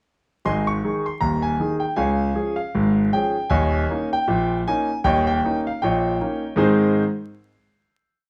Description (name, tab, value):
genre	ragtime piano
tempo	78 BPM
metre	2/4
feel	swing 57% on 16ths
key	Ab major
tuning	A4 = 438 Hz
part	clear concert grand piano	solo	0.5-7.0 s	Eb1 to Db6	-21 LUFS	equal	none
room	moderate large studio reverb, RT60 0.8 s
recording	band playing live in one room, vinyl crackle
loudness	-21 LUFS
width	mono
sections	0.4-6.6 A section; 6.6-8.1 final chord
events	none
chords	0.4 Ab5; 2.0 Db; 3.5 Eb5; 6.6 Ab